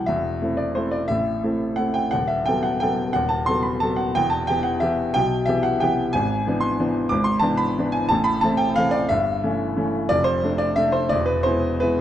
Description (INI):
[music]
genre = classical, piano waltz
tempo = 157-195 BPM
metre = 3/4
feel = rubato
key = E minor, A minor from 6.1 s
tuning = A4 = 444 Hz
[part]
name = bright grand piano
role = solo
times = 0.0-12.0 s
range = D#1 to D6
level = -19 LUFS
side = equal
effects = none
[sound]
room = moderate scoring stage reverb, RT60 1.7 s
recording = dark, warm production, nothing above 10.8 kHz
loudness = -19 LUFS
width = side -11 dB against mid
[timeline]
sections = 0.0-12.0 A section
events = none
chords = 0.1 Am/E; 2.1 B7/D#; 4.2 Em; 6.1 E7/G#; 8.1 Am; 9.1 A7/G; 10.1 Dm/F; 11.1 E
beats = | 0.09 0.43 0.77 | 1.10 1.44 1.79 | 2.13 2.48 2.82 | 3.16 3.49 3.84 | 4.17 4.50 4.82 | 5.15 5.47 5.81 | 6.14 6.46 6.79 | 7.11 7.42 7.76 | 8.10 8.43 8.76 | 9.10 9.43 9.78 | 10.12 10.44 10.78 | 11.12 11.45 11.82